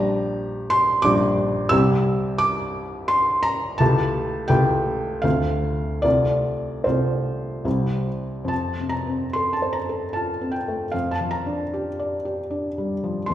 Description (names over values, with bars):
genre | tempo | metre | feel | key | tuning
classical, romantic nocturne for solo piano | 69-91 BPM | 3/4 | rubato | F major | A4 = 440 Hz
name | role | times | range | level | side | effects
felt-muted upright piano | solo | 0.0-13.3 s | Bb1 to E6 | -20 LUFS | equal | none
room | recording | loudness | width
wet recital hall reverb, RT60 1.7 s | heard from further back in the room | -20 LUFS | side -12 dB against mid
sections
0.0-8.5 A section; 8.5-13.3 B section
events
none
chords
0.0 Gm/Bb; 1.7 C; 3.8 A7/C#; 5.2 Dm7; 6.0 F/C; 7.7 C; 8.5 F; 10.9 Gm7/F